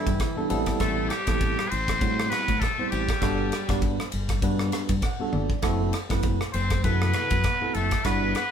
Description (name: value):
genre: electric jazz fusion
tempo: 99 BPM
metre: 4/4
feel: swing 56% on 16ths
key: unclear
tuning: A4 = 435 Hz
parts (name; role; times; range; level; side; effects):
- trumpet with straight mute; melody; 0.0-8.5 s; E4 to C5; -28 LUFS; left 1 dB; none
- biting overdriven guitar; second line; 0.0-8.5 s; E3 to C4; -34 LUFS; left 3 dB; none
- bell-like tine electric piano; accompaniment; 0.0-8.4 s; C3 to G5; -29 LUFS; right 3 dB; fast stereo tremolo
- fingered electric bass; bass; 0.1-8.3 s; F#1 to A2; -28 LUFS; left 1 dB; none
- modern studio drum kit; drums; 0.1-8.5 s; kick drum, ride cymbal, rim click, toms; -28 LUFS; equal; none
room: moderate studio reverb, RT60 0.5 s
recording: band playing live in one room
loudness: -22 LUFS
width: side -8 dB against mid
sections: 0.0-8.5 A section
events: tine electric piano fill 0.0-0.8, 4.7-5.6; drum fill 5.3-5.6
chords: 0.0 Em7/G; 0.5 Am9; 3.2 Gmaj9; 5.6 F#m7b5